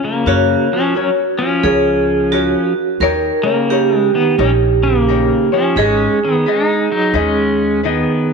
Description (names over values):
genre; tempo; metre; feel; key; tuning
Hawaiian; 87 BPM; 4/4; swing 63% on 8ths; F# major; A4 = 440 Hz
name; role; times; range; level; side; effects
pedal steel guitar; melody; 0.0-8.3 s; C#3 to D#4; -16 LUFS; left 2 dB; none
vibraphone with hard mallets; second line; 0.0-8.3 s; E#4 to A#4; -17 LUFS; right 8 dB; none
tenor ukulele; accompaniment; 0.0-8.3 s; C#4 to D#5; -20 LUFS; left 12 dB; none
upright bass; bass; 0.3-8.0 s; G#1 to F#2; -20 LUFS; equal; none
room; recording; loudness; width
moderate echo chamber reverb, RT60 1.8 s, studio reverb; 1960s-style stereo with parts hard left and right; -12 LUFS; side -5 dB against mid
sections
0.0-8.3 A section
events
none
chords
0.3 F#; 3.0 D#7; 5.8 G#m